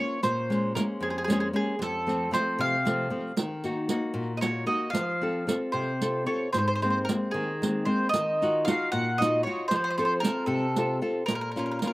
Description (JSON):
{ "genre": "italian folk, Italian serenade", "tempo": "76 BPM (dotted quarters)", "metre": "6/8", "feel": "rubato", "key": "Bb minor", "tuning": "A4 = 439 Hz", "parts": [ { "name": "mandolin", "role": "melody", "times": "0.0-11.9 s", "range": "Ab4 to Gb5", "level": "-28 LUFS", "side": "right 1 dB", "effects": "slapback echo" }, { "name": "nylon-string guitar", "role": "accompaniment", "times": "0.0-11.9 s", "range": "F2 to A4", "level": "-28 LUFS", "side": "left 1 dB", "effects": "slapback echo" }, { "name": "riq", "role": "percussion", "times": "0.2-11.9 s", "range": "none", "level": "-31 LUFS", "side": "right 3 dB", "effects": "slapback echo" } ], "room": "little or no reverb", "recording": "recorded outdoors, with no room sound", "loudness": "-25 LUFS", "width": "side -19 dB against mid", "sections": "0.2-11.9 A section", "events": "none", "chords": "0.2 Bbm7; 1.8 F; 3.4 Ebm; 4.9 F; 6.5 Abadd9; 8.1 Ebmadd9; 9.7 F; 11.3 Bbm", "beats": "| 0.22 1.02 | 1.80 2.59 | 3.37 4.15 | 4.93 5.73 | 6.53 7.33 | 8.13 8.92 | 9.70 10.49 | 11.28" }